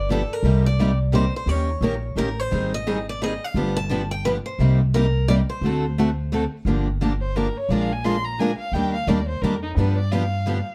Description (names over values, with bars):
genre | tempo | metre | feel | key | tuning
acoustic string swing (jazz manouche) | 174 BPM | 3/4 | swing 60% on 8ths | G minor | A4 = 439 Hz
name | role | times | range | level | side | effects
picked steel-string acoustic guitar | melody | 0.0-6.3 s | A4 to A5 | -30 LUFS | equal | none
upright bass | bass | 0.0-10.6 s | G1 to G2 | -25 LUFS | equal | none
picked steel-string acoustic guitar | accompaniment | 0.1-10.6 s | C3 to Bb4 | -27 LUFS | equal | none
picked steel-string acoustic guitar | accompaniment | 0.1-10.6 s | C3 to Bb4 | -31 LUFS | equal | none
warm violin | second line | 7.2-10.7 s | Eb4 to C6 | -31 LUFS | equal | none
room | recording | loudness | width
light reverb | dark, warm production | -22 LUFS | mono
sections
0.0-6.7 A section; 6.7-10.7 B section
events
violin solo 6.7-10.7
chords
0.4 Cm7; 1.5 Eb7; 2.5 Abmaj7; 3.6 G7; 4.6 Cm7; 5.6 D7; 6.7 Gm7; 7.7 Bb7; 8.7 Ebmaj7; 9.8 G7